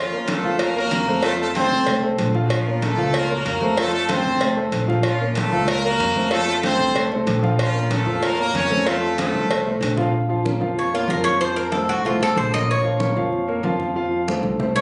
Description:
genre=latin, salsa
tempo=189 BPM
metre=4/4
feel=straight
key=Bb harmonic minor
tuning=A4 = 440 Hz
part: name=bright horn section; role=melody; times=0.0-9.8 s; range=F3 to Db5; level=-24 LUFS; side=equal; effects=none
part: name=dark grand piano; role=accompaniment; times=0.1-14.8 s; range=F3 to F5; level=-26 LUFS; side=equal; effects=none
part: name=congas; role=percussion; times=0.1-14.8 s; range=none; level=-32 LUFS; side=equal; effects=none
part: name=cowbell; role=percussion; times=0.3-10.0 s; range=none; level=-29 LUFS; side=equal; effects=none
part: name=upright bass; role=bass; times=0.4-14.8 s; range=Bb1 to F2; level=-28 LUFS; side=equal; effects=none
part: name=Cuban tres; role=melody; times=10.8-14.8 s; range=F4 to Eb5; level=-24 LUFS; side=equal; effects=none
room=moderate small room reverb, RT60 0.5 s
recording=recorded on a phone in the room, club reverb, nothing above 10.6 kHz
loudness=-21 LUFS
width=mono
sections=0.0-10.1 A section; 10.1-14.8 B section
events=drum fill 9.3-10.1; Cuban tres solo 10.1-14.8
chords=0.0 Bbm; 1.2 F; 2.5 Bbm; 3.8 F; 5.0 Bbm; 6.3 F; 7.6 Bbm; 8.9 F; 10.1 Bbm; 11.4 F; 12.7 Bbm; 14.0 F

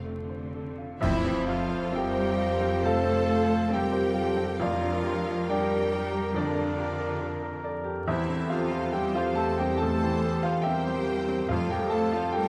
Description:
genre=classical, romantic movement for piano and orchestra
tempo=69 BPM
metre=4/4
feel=uneven beats, rubato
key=F major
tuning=A4 = 440 Hz
part: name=clear grand piano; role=melody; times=0.0-12.5 s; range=E2 to A5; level=-32 LUFS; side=equal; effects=none
part: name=clear symphonic violin section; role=melody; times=0.0-12.5 s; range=F4 to C5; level=-43 LUFS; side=equal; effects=none
part: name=bright symphonic violin section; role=second line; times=0.0-12.5 s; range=D5 to A5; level=-43 LUFS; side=equal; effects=none
part: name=rich symphonic viola section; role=accompaniment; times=0.0-12.5 s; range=A3 to A4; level=-38 LUFS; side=equal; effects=none
part: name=rich symphonic cello section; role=bass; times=0.0-12.5 s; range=D3 to A3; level=-36 LUFS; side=equal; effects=none
part: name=rich symphonic double bass section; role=bass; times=0.0-12.5 s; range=F1 to F2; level=-37 LUFS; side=equal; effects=none
part: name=mellow clarinet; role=second line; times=1.0-12.5 s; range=D4 to A4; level=-40 LUFS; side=equal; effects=none
part: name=clear trombone section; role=sustained chords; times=1.0-12.5 s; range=F3 to F4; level=-41 LUFS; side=equal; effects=none
part: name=warm French horn section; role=sustained chords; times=1.0-12.5 s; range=G4 to C5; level=-37 LUFS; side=equal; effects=none
part: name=dark trumpet section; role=stabs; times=1.0-12.5 s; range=A4 to C5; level=-39 LUFS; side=equal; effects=none
part: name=clash cymbals and concert bass drum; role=percussion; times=1.0-2.8 s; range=none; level=-40 LUFS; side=equal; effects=none
part: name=timpani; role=percussion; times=1.0-5.9, 11.5-12.5 s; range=F2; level=-39 LUFS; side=equal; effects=none
room=wet scoring stage reverb, RT60 1.6 s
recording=vinyl crackle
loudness=-27 LUFS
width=mono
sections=0.0-1.0 A section; 1.0-12.5 B section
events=band accent 1.0-1.9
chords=0.0 F; 4.6 Gm7/F; 8.1 C/E; 11.5 F

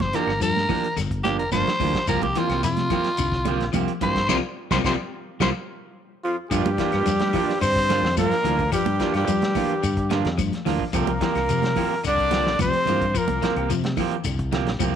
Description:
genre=afrobeat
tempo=108 BPM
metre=4/4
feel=straight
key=G dorian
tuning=A4 = 441 Hz
part: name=raspy tenor saxophone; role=melody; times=0.0-5.5 s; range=F4 to C5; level=-25 LUFS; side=equal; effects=none
part: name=electric guitar at the edge of break-up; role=arpeggios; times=0.0-15.0 s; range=C3 to G3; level=-29 LUFS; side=left 11 dB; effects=ensemble chorus
part: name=fingered electric bass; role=bass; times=0.0-14.9 s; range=F1 to G3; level=-26 LUFS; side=equal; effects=none
part: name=warm soul drum kit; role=drums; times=0.0-14.9 s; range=hi-hat, kick drum, snare drum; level=-31 LUFS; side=equal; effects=none
part: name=congas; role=percussion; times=0.0-14.9 s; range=none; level=-31 LUFS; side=right 10 dB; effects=none
part: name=electric guitar at the edge of break-up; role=stabs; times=0.1-15.0 s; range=F3 to G4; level=-28 LUFS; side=right 11 dB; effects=none
part: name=shekere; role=percussion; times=0.1-14.9 s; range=none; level=-34 LUFS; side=left 4 dB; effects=none
part: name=claves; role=percussion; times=0.3-14.9 s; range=none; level=-37 LUFS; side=left 12 dB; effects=none
part: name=clear trumpet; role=melody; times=6.2-13.7 s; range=F4 to D5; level=-24 LUFS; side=equal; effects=slapback echo
part: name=raspy baritone saxophone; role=second line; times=6.2-13.7 s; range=F2 to D3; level=-33 LUFS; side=left 12 dB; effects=none
part: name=raspy tenor saxophone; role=second line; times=6.2-13.7 s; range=F3 to D4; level=-33 LUFS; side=right 9 dB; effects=none
room=light reverb, small room ambience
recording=1960s-style stereo with parts hard left and right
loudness=-20 LUFS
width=side -8 dB against mid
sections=0.0-6.5 A section; 6.5-15.0 B section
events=tenor saxophone solo 0.0-6.5; band accent 4.3-6.5; drum fill 5.4-6.5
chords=0.0 Gm7; 2.1 C7sus4; 6.5 Gm7; 10.9 C7sus4

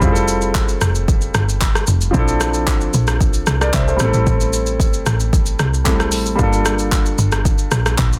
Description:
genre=amapiano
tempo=113 BPM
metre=4/4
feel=straight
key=unclear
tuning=A4 = 445 Hz
part: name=warm grand piano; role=accompaniment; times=0.0-8.2 s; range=F3 to E5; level=-23 LUFS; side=equal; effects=none
part: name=woody log drum bass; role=bass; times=0.0-8.2 s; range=F1 to C2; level=-21 LUFS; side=equal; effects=none
part: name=deep house drum kit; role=drums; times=0.0-8.2 s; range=handclaps, hi-hat, kick drum, rim click, shaker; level=-20 LUFS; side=equal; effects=none
room=digital ambience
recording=dense, heavily limited modern master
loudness=-17 LUFS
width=mono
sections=0.0-8.2 A section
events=none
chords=0.0 Fmaj9; 2.1 Bbmaj9#11; 4.0 Am7; 6.4 Gm9

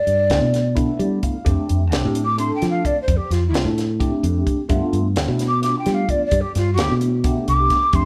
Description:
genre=electric jazz fusion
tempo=259 BPM (eighths)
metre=7/8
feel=straight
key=G mixolydian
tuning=A4 = 439 Hz
part: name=mellow hollow jazz flute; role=melody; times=0.0-8.1 s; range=F4 to D6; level=-22 LUFS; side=equal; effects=none
part: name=fingered electric bass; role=bass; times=0.1-8.0 s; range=C2 to G3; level=-23 LUFS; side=equal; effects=none
part: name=tight funk drum kit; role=drums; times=0.1-8.0 s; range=hi-hat, kick drum, snare drum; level=-26 LUFS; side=equal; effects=none
part: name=tine electric piano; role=accompaniment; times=0.3-8.1 s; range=A3 to F5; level=-27 LUFS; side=equal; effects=phaser
room=moderate stone room reverb, RT60 1.0 s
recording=band playing live in one room, cassette tape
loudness=-19 LUFS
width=mono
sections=0.0-8.1 A section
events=flute solo 0.0-8.1; tine electric piano fill 0.8-1.5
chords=0.0 G9; 1.5 F6; 4.7 G9

